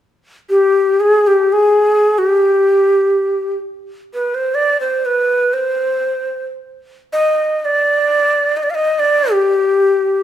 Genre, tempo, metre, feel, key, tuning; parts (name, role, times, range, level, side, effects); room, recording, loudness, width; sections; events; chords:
arabic; free time; G maqam hijaz; A4 = 439 Hz
breathy bright ney; melody; 0.5-10.2 s; G4 to F5; -12 LUFS; equal
light reverb; minimal, uncompressed stereo recording; -12 LUFS; side -11 dB against mid
0.2-10.2 A section